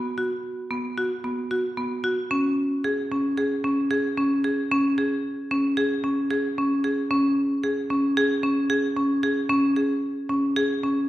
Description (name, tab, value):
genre	contemporary instrumental, contemporary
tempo	225 BPM (eighths)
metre	9/8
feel	straight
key	unclear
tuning	A4 = 440 Hz
part	marimba with hard mallets	solo	0.0-11.0 s	B3 to G#4	-22 LUFS	equal	none
room	moderate recital hall reverb, RT60 1.4 s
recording	heard from further back in the room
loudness	-22 LUFS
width	side -15 dB against mid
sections	0.0-11.1 A section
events	none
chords	none